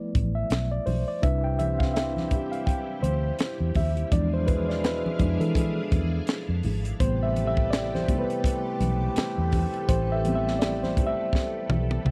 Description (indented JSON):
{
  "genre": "lush 1970s-style soul",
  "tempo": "83 BPM",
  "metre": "4/4",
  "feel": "swing 58% on 16ths",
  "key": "A minor",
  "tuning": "A4 = 440 Hz",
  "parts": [
    { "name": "reed electric piano", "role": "accompaniment", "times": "0.0-12.1 s", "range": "C3 to G5", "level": "-32 LUFS", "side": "equal", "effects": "fast tremolo" },
    { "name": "tight funk drum kit", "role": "drums", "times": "0.1-12.1 s", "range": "hi-hat, kick drum, snare drum, toms", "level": "-29 LUFS", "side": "equal", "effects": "none" },
    { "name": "vintage muted fingered electric bass", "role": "bass", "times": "0.2-12.1 s", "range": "G#1 to E3", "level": "-30 LUFS", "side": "equal", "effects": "none" },
    { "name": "congas", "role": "percussion", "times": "0.2-12.1 s", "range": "none", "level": "-37 LUFS", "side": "equal", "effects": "none" },
    { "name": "string machine, full ensemble", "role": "sustained chords", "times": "1.2-12.1 s", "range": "C3 to F5", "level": "-40 LUFS", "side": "equal", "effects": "phaser, ensemble chorus" },
    { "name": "dark trombone section", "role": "stabs", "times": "1.2-12.1 s", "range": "G2 to G4", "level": "-36 LUFS", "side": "equal", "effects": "none" }
  ],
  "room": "little or no reverb",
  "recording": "dry, close 1970s-style studio recording",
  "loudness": "-26 LUFS",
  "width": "mono",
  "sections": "0.0-12.1 A section",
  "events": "reed electric piano solo 0.0-12.1; drum fill 11.3-12.1",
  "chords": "0.0 G13 (rootless); 1.2 Cmaj7; 4.1 E7b9; 7.0 Am9"
}